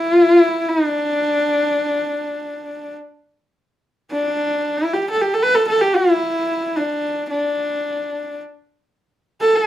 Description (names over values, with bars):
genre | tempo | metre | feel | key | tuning
mongolian traditional, Mongolian folk | free time | none | none | D zhi mode | A4 = 441 Hz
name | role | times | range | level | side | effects
clear horsehead fiddle | solo | 0.0-9.7 s | D4 to B4 | -16 LUFS | equal | none
room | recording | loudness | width
wet studio reverb, RT60 0.6 s | rough home demo mix | -16 LUFS | side -12 dB against mid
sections
0.0-9.7 A section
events
none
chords
none